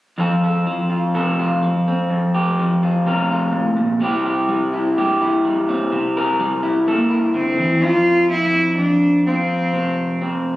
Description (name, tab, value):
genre	folk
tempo	63 BPM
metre	4/4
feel	straight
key	F major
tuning	A4 = 439 Hz
part	electric guitar through a small old amp	accompaniment	0.2-10.6 s	F2 to Bb4	-17 LUFS	equal	none
part	dark cello	melody	6.9-10.2 s	Bb3 to F4	-17 LUFS	equal	none
room	moderate studio reverb, RT60 0.7 s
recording	recorded on a phone in the room, studio reverb, compression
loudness	-16 LUFS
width	side -16 dB against mid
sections	0.2-7.8 A section; 7.8-10.6 B section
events	none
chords	0.2 F; 4.0 C; 7.8 F5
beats	| 0.19 1.14 2.10 3.04 | 3.99 4.94 5.89 6.84 | 7.80 8.76 9.72